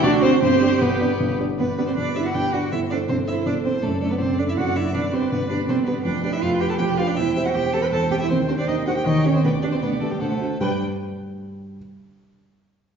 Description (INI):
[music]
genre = quick classical-period movement for piano quintet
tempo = 159 BPM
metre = 3/4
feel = rubato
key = G major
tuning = A4 = 441 Hz
[part]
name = warm violin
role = melody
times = 0.0-10.8 s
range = B4 to G5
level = -30 LUFS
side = left 3 dB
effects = none
[part]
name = rich cello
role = second line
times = 0.0-10.8 s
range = G3 to B4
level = -24 LUFS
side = right 5 dB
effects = none
[part]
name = rich violin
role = second line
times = 0.0-10.8 s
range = B3 to B5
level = -29 LUFS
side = left 2 dB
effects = none
[part]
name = dark baby grand piano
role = accompaniment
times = 0.0-11.8 s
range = E1 to G5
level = -22 LUFS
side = equal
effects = none
[part]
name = rich viola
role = accompaniment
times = 0.0-10.8 s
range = F#4 to D5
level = -30 LUFS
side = right 4 dB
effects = none
[sound]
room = wet recital hall reverb, RT60 1.6 s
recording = heard from further back in the room, nothing above 7.6 kHz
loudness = -19 LUFS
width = side -7 dB against mid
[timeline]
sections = 0.0-1.6 A section; 1.6-10.6 B section; 10.6-11.8 C section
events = none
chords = 0.0 D7; 0.4 G; 2.7 Am7/G; 3.8 D/F#; 4.9 G; 6.0 G7/F; 7.2 C/E; 8.3 Cm/Eb; 9.1 Eb7; 9.4 G/D; 10.2 D7; 10.6 G